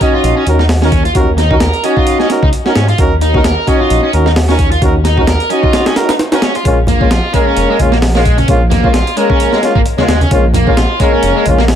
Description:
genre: breakbeat, breaks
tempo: 131 BPM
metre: 4/4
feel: swing 56% on 16ths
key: unclear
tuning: A4 = 440 Hz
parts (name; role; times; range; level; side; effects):
- distorted electric guitar; riff; 0.0-11.6 s; Ab3 to Bb4; -16 LUFS; equal; distortion, overdrive, ping-pong delay
- warm brass ensemble; stabs; 0.0-11.6 s; Ab3 to Eb5; -14 LUFS; equal; vintage 12-bit sampler grit, ping-pong delay
- breakbeat sampler-style drum kit; drums; 0.0-11.8 s; hi-hat, kick drum, snare drum; -14 LUFS; equal; none
- dark detuned saw bass; bass; 0.2-11.8 s; F1 to Ab2; -13 LUFS; equal; none
- congas; percussion; 6.9-11.6 s; none; -18 LUFS; right 1 dB; none
room: light reverb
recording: none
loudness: -9 LUFS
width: side -9 dB against mid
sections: 0.0-11.8 A section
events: kick drops out 5.7-6.7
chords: 0.0 Ebm7; 6.7 Bbm7

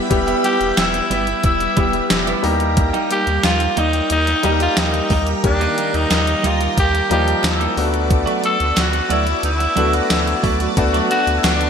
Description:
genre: 1980s-style pop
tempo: 90 BPM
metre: 4/4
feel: straight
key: unclear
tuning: A4 = 442 Hz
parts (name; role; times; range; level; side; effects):
- warm concert grand piano; accompaniment; 0.0-11.7 s; Eb3 to Eb5; -22 LUFS; left 3 dB; shimmer reverb
- string machine, violins; sustained chords; 0.0-11.7 s; G3 to B5; -26 LUFS; right 2 dB; ensemble chorus, shimmer reverb
- twelve-string electric guitar; riff; 0.0-11.6 s; F#3 to G4; -25 LUFS; right 5 dB; wide subtle chorus, shimmer reverb, ping-pong delay
- rubbery square bass; bass; 0.1-11.7 s; E1 to Eb2; -22 LUFS; equal; none
- gated 80s digital drum machine; drums; 0.1-11.7 s; hi-hat, kick drum, snare drum, tambourine; -20 LUFS; equal; gated reverb, gated reverb snare, overdrive
- breathy tenor saxophone; melody; 0.4-11.7 s; D4 to A4; -20 LUFS; equal; shimmer reverb, ping-pong delay
- group handclap; percussion; 0.8-11.6 s; none; barely audible; none; none
room: wet plate reverb, RT60 1.7 s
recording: bright 1980s-style digital production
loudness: -15 LUFS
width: side -7 dB against mid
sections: 0.0-11.7 A section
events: none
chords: 0.0 Em; 2.4 Eb; 7.8 Bm7/D

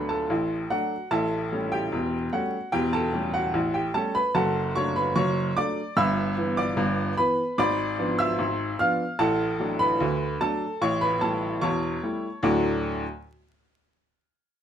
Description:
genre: ragtime piano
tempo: 74 BPM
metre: 2/4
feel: straight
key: D major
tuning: A4 = 442 Hz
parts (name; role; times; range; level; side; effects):
- bright upright piano; solo; 0.0-13.0 s; E1 to E#6; -23 LUFS; equal; none
room: moderate studio reverb, RT60 0.5 s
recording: band playing live in one room, vinyl crackle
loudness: -23 LUFS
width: side -9 dB against mid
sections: 0.0-12.4 A section; 12.4-14.1 B section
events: none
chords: 0.0 D; 1.1 A7; 2.7 A7/E; 4.4 D/F#; 6.0 Em/G; 7.6 G#dim7; 9.2 D/A; 10.8 A7; 12.4 D

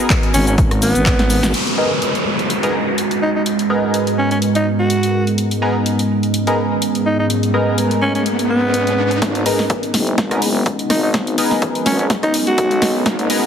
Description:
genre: bass house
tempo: 125 BPM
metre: 4/4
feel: swing 55% on 16ths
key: G# minor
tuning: A4 = 440 Hz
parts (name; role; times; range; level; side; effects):
- band-passed chord stab; stabs; 0.0-13.4 s; B3 to A#4; -22 LUFS; left 1 dB; chorus, phaser, cassette tape, sidechain pumping, ping-pong delay
- warbly tape-like pad; texture; 0.0-13.5 s; G#3 to F#5; -22 LUFS; right 2 dB; chorus, built-in reverb, sidechain pumping
- electronic kick drum; drums; 0.1-1.2, 9.2-13.2 s; none; -18 LUFS; equal; high-pass filter on kick, studio ambience
- house drum kit; drums; 0.1-13.4 s; crash cymbal, handclaps, hi-hat, rim click, shaker, snare drum; -21 LUFS; equal; studio ambience
- raspy alto saxophone; melody; 0.3-13.0 s; B3 to F#4; -20 LUFS; equal; ping-pong delay
- growling FM bass; bass; 0.3-1.5, 9.2-13.3 s; F#1 to B1; -20 LUFS; equal; tube saturation, sidechain pumping, high-pass filter
- sweeping resonant pad; sustained chords; 1.5-13.5 s; G#2 to A#4; -22 LUFS; equal; chorus, phaser, sidechain pumping
- downlifter and riser; sound effects; 1.5-13.5 s; none; -24 LUFS; equal; none
room: moderate lush hall reverb, RT60 2.4 s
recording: heavily compressed radio sound, multiband compression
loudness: -14 LUFS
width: side -8 dB against mid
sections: 0.0-1.5 A section; 1.5-9.2 B section; 9.2-13.5 C section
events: drum fill 1.1-1.5, 9.2-13.5; band accent 1.4; riser 6.8-9.2, 9.2-13.5; build-up 9.2-13.5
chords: 0.0 G#madd9

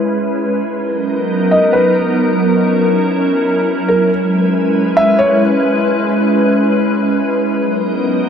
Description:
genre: hip hop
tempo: free time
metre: none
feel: none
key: C# dorian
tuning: A4 = 440 Hz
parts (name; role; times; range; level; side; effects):
- glassy FM pad; sustained chords; 0.0-8.3 s; F#3 to B4; -13 LUFS; equal; ensemble chorus, built-in reverb, low-pass filter
- felt-muted upright piano; melody; 1.5-5.4 s; A#4 to E5; -17 LUFS; equal; low-pass filter, tape echo
room: wet huge ambient reverb, RT60 7.4 s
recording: none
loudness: -12 LUFS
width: side -7 dB against mid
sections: 0.0-4.1 A section; 4.1-8.3 B section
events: filter sweep 0.0-4.1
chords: 0.0 C#m7; 0.7 Bmaj7; 2.4 F#7; 4.1 C#m7; 7.6 Bmaj7

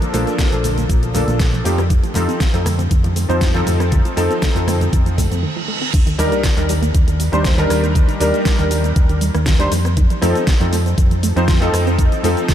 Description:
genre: nu-disco, nu disco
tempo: 119 BPM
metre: 4/4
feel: straight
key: F mixolydian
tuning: A4 = 440 Hz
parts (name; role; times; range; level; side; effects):
- warm electric grand piano; accompaniment; 0.0-12.5 s; F3 to C5; -20 LUFS; equal; ensemble chorus, tape echo
- wide unison pluck; arpeggios; 0.0-12.5 s; D3 to C4; -26 LUFS; right 3 dB; sidechain pumping, tape echo
- pop drum kit; drums; 0.0-12.5 s; cabasa, crash cymbal, hi-hat, rim click, snare drum; -25 LUFS; equal; overdrive
- congas; percussion; 0.0-5.4 s; none; -29 LUFS; left 2 dB; none
- fingered electric bass; bass; 0.1-12.3 s; Bb1 to F2; -18 LUFS; equal; none
- electronic kick drum; drums; 0.4-12.5 s; none; -16 LUFS; equal; overdrive
- reverse cymbal and sub drop; sound effects; 5.2-8.0 s; none; -28 LUFS; right 2 dB; none
room: light reverb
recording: none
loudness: -14 LUFS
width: side -10 dB against mid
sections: 0.0-5.9 A section; 5.9-12.5 B section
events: reverse cymbal 5.2-5.9; break 5.4-5.9; drop 5.9-12.5; impact 5.9-8.0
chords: 0.0 Bbmaj7; 1.6 F7; 5.9 Ebmaj7; 9.7 F7

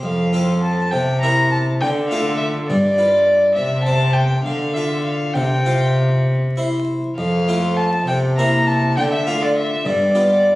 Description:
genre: classical, baroque-style sonata movement with continuo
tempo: 67 BPM (dotted quarters)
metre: 6/8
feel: rubato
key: unclear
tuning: A4 = 440 Hz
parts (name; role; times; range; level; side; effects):
- dark violin; melody; 0.0-10.6 s; D5 to Bb5; -19 LUFS; left 1 dB; none
- harpsichord; accompaniment; 0.0-10.6 s; F2 to C5; -21 LUFS; right 1 dB; none
- rich cello; bass; 0.0-10.6 s; F2 to D3; -20 LUFS; equal; none
room: wet recital hall reverb, RT60 1.4 s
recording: recorded on a phone in the room, studio reverb, vinyl crackle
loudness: -15 LUFS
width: side -18 dB against mid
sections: 0.0-10.6 A section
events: none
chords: 0.0 F; 0.9 C7; 1.8 Dm; 2.7 G7; 3.6 C6; 4.5 Dm; 5.4 Csus4; 6.3 C; 7.2 F; 8.1 C7; 9.0 Dm; 9.9 G7

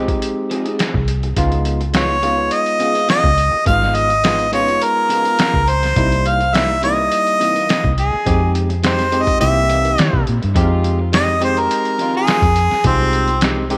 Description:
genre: straight-eighth soul blues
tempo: 104 BPM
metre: 4/4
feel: straight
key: F minor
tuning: A4 = 440 Hz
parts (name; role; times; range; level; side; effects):
- barky tine electric piano; accompaniment; 0.0-13.8 s; G3 to G4; -26 LUFS; equal; none
- electric guitar through a small old amp; stabs; 0.0-13.8 s; F2 to Ab4; -29 LUFS; equal; analog chorus
- vintage muted fingered electric bass; bass; 0.0-13.8 s; Ab1 to D#3; -22 LUFS; equal; none
- lo-fi sampler-style drum kit; drums; 0.1-13.8 s; hi-hat, kick drum, snare drum; -23 LUFS; equal; overdrive
- clear harmonica; melody; 2.0-13.4 s; C4 to F5; -19 LUFS; equal; overdrive, slapback echo
- clear horn section; sustained chords; 10.6-13.4 s; Ab3 to F4; -31 LUFS; equal; none
room: moderate plate reverb, RT60 2.4 s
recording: none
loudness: -16 LUFS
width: mono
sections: 0.0-10.6 A section; 10.6-13.8 B section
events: harmonica solo 10.6-13.8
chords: 0.0 Fm7; 1.4 Db7; 6.0 C7#9; 8.3 Fm7; 9.4 C7#9; 10.6 Fm7

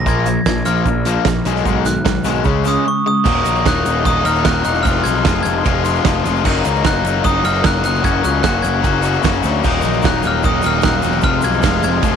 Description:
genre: indie rock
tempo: 150 BPM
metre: 4/4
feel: straight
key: Eb minor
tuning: A4 = 440 Hz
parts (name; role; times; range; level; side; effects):
- glockenspiel with brass mallets; melody; 0.0-12.2 s; Db6 to Ab6; -21 LUFS; right 1 dB; slapback echo
- mellow electric guitar; riff; 0.0-3.3, 9.6-12.2 s; Eb2 to D4; -23 LUFS; right 12 dB; ensemble chorus, slapback echo
- overdriven electric guitar; riff; 0.0-12.2 s; Eb2 to Gb4; -18 LUFS; left 14 dB; none
- fuzz picked electric bass; bass; 0.0-12.2 s; Eb1 to D2; -19 LUFS; right 1 dB; overdrive
- loose indie drum kit; drums; 0.1-12.1 s; crash cymbal, hi-hat, kick drum, ride cymbal, snare drum; -20 LUFS; right 4 dB; none
- tube shaker; percussion; 0.1-12.1 s; none; -37 LUFS; right 15 dB; none
room: light reverb, small room ambience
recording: 1960s-style stereo with parts hard left and right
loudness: -13 LUFS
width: side -7 dB against mid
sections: 0.0-3.3 A section; 3.3-12.2 B section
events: glockenspiel solo 0.0-3.3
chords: 0.1 Bb; 1.5 Abm/Cb; 2.5 Db5; 3.3 Ebm; 4.9 Fm; 6.4 Ebm/Gb; 8.0 Gbadd9; 9.6 Ebm; 11.2 Fdim

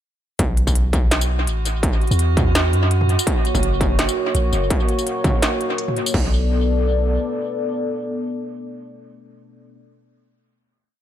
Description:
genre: half-time drum and bass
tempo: 167 BPM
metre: 4/4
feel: swing 55% on 16ths, half-time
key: B minor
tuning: A4 = 440 Hz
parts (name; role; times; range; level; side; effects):
- long sustained 808-style bass; bass; 0.4-7.2 s; F#1 to F#2; -19 LUFS; equal; tube saturation
- industrial drum kit; drums; 0.4-6.2 s; crash cymbal, kick drum; -20 LUFS; equal; distortion
- industrial drum kit; drums; 0.4-6.1 s; hi-hat, snare drum, tambourine, toms; -24 LUFS; equal; dub echo
- metallic inharmonic drone; texture; 1.2-4.7 s; F#4; -27 LUFS; right 6 dB; chorus, built-in reverb
- dark analog pad; sustained chords; 3.3-9.8 s; A#3 to D5; -24 LUFS; left 2 dB; chorus, vintage 12-bit sampler grit, sidechain pumping
room: little or no reverb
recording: echo-heavy mix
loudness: -17 LUFS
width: side -11 dB against mid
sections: 0.4-6.1 drop; 6.1-9.0 final chord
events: drop 0.4-6.1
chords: 0.4 B5; 3.3 F#; 6.1 Bm7

